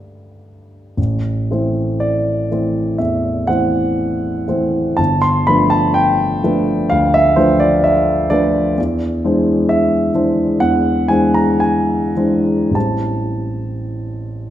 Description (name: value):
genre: classical, impressionist solo piano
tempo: 61 BPM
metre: 4/4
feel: uneven beats, rubato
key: unclear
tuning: A4 = 439 Hz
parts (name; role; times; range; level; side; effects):
- warm grand piano; solo; 0.0-14.5 s; G1 to B6; -14 LUFS; equal; none
room: wet recital hall reverb, RT60 1.2 s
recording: none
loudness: -14 LUFS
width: side -12 dB against mid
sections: 1.0-14.5 A section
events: none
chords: 0.0 Gadd9; 1.0 Am6; 5.0 G9; 8.8 Eaug7; 12.8 Am7